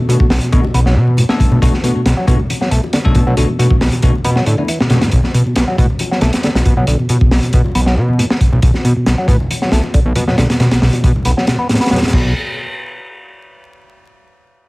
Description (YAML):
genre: breakbeat, breaks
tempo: 137 BPM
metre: 4/4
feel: swing 53% on 16ths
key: B minor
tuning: A4 = 439 Hz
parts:
  - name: percussive tonewheel organ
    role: riff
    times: 0.0-12.3 s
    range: A2 to B3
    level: -19 LUFS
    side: equal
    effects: overdrive, low-pass filter, ping-pong delay
  - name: bell-like tine electric piano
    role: stabs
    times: 0.1-5.0 s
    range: A3 to A4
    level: -22 LUFS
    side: left 3 dB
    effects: ping-pong delay
  - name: fat analog bass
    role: bass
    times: 0.1-12.3 s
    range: B1 to B2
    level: -14 LUFS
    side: equal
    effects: none
  - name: crunchy breakbeat drum kit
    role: drums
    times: 0.1-12.2 s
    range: crash cymbal, hi-hat, kick drum, snare drum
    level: -15 LUFS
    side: equal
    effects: none
  - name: bongos and congas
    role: percussion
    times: 0.1-12.1 s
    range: none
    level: -24 LUFS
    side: left 1 dB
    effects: none
room: little or no reverb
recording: vinyl crackle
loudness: -11 LUFS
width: side -23 dB against mid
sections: 0.0-12.1 A section; 12.1-13.9 B section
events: none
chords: 0.0 Bm7; 12.1 N.C.